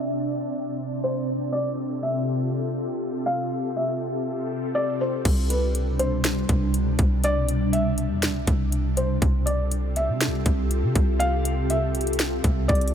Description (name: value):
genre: hip hop, atmospheric cloud-rap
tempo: 121 BPM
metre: 4/4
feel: half-time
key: C major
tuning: A4 = 440 Hz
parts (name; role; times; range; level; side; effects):
- felt-muted upright piano; melody; 0.0-12.9 s; B4 to F5; -29 LUFS; equal; tape echo
- ethereal airy pad; sustained chords; 0.0-12.9 s; B2 to D5; -27 LUFS; equal; ensemble chorus, built-in reverb
- soft 808-style bass; bass; 5.3-12.9 s; C2 to C3; -24 LUFS; equal; none
- trap drum kit; drums; 5.3-12.9 s; crash cymbal, hi-hat, kick drum, snare drum; -24 LUFS; equal; none
room: light reverb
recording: low-pass filter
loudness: -22 LUFS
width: side -8 dB against mid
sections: 0.0-5.3 A section; 5.3-12.9 B section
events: filter sweep 0.0-5.3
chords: 0.0 Cadd9; 1.3 Fmaj9/C; 5.3 Cmaj9; 9.2 Fmaj9/C